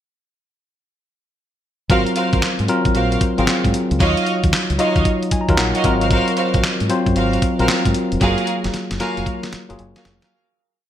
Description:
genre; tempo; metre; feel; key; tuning
R&B, new jack swing; 114 BPM; 4/4; swing 65% on 16ths; unclear; A4 = 440 Hz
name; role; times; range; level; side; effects
tine electric piano; accompaniment; 1.9-10.3 s; Gb3 to Bb5; -19 LUFS; left 1 dB; none
muted studio string section; stabs; 1.9-10.4 s; Gb4 to F5; -22 LUFS; right 3 dB; none
deep dub fingered electric bass; bass; 1.9-10.2 s; F1 to Ab2; -22 LUFS; equal; none
dusty soul sampler-style drum kit; drums; 1.9-10.3 s; handclaps, hi-hat, kick drum, snare drum; -20 LUFS; equal; gated reverb
room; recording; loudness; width
moderate plate reverb, RT60 1.2 s; bright 1980s-style digital production; -15 LUFS; side -10 dB against mid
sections
1.9-10.3 verse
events
tine electric piano fill 5.1-6.1; fade-out 8.2-10.3; drum fill 8.2-10.3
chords
1.9 Ab13; 4.0 Ebm9; 5.8 Ab13; 8.2 Gbmaj9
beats
| 1.90 2.42 2.95 3.48 | 4.00 4.53 5.05 5.58 | 6.11 6.63 7.16 7.69 | 8.21 8.74 9.26 9.79

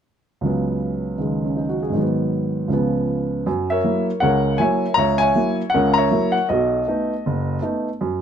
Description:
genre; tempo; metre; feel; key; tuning
solo jazz; 158 BPM; 4/4; swing 63% on 8ths; F# mixolydian; A4 = 440 Hz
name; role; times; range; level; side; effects
warm upright piano; solo; 0.4-8.2 s; F#1 to A#5; -18 LUFS; equal; none
room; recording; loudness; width
light reverb; close, detailed microphones; -18 LUFS; side -8 dB against mid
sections
0.4-3.5 A section; 3.5-8.2 B section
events
none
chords
0.4 C#7sus4; 1.9 G#m7; 2.7 C#7; 3.5 F#7; 6.5 B7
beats
| 0.43 0.81 1.19 1.57 | 1.95 2.33 2.71 3.08 | 3.46 3.84 4.22 4.60 | 4.98 5.36 5.73 6.11 | 6.49 6.87 7.25 7.63 | 8.01

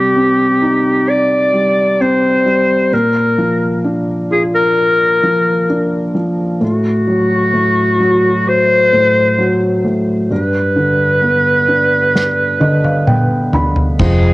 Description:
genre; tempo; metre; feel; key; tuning
pop ballad; 65 BPM; 4/4; straight; unclear; A4 = 437 Hz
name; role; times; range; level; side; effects
bright clarinet; melody; 0.0-14.3 s; F#4 to D5; -13 LUFS; equal; none
felt-muted upright piano; accompaniment; 0.0-14.3 s; G2 to B5; -15 LUFS; equal; cassette tape
unplugged drum kit; drums; 12.2-14.2 s; crash cymbal, kick drum, snare drum, toms; -15 LUFS; equal; none
percussive tonewheel organ; sustained chords; 14.0-14.3 s; F3 to C4; -19 LUFS; left 1 dB; overdrive, stopped rotary speaker, cassette tape
vintage muted fingered electric bass; bass; 14.0-14.3 s; F1; -11 LUFS; equal; none
room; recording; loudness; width
light reverb, small room ambience; home recording on cassette; -11 LUFS; side -19 dB against mid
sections
0.0-14.0 A section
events
felt piano fill 12.2-14.0; drum fill 12.2-14.0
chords
0.0 Cm; 2.9 Bb; 6.6 Am6; 10.3 G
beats
0.15 1.08 2.00 | 2.92 3.85 4.77 5.69 | 6.62 7.54 8.46 9.39 | 10.31 11.23 12.15 13.08 | 14.00

